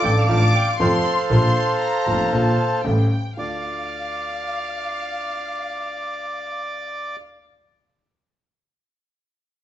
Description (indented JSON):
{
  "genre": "tango",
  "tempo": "118 BPM",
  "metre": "4/4",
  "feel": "rubato",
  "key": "D minor",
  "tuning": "A4 = 440 Hz",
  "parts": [
    { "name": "bandoneon", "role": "melody", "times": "0.0-7.2 s", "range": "A4 to A5", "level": "-24 LUFS", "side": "right 1 dB", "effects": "none" },
    { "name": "warm studio violin section", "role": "second line", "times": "0.0-7.1 s", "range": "F5 to D6", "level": "-27 LUFS", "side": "left 3 dB", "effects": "none" },
    { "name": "warm concert grand piano", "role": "accompaniment", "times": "0.0-7.1 s", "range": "F1 to F4", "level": "-23 LUFS", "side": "equal", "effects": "none" },
    { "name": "clear double bass", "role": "bass", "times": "0.0-3.6 s", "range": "F1 to F2", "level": "-21 LUFS", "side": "equal", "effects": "none" }
  ],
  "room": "wet large studio reverb, RT60 1.1 s",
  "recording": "band playing live in one room, nothing above 7.9 kHz",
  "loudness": "-19 LUFS",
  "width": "side -12 dB against mid",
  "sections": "0.0-3.4 A section; 3.4-7.5 B section",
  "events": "none",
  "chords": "0.0 Dm/A; 0.8 F; 1.3 Bb; 2.9 A7; 3.4 Dm"
}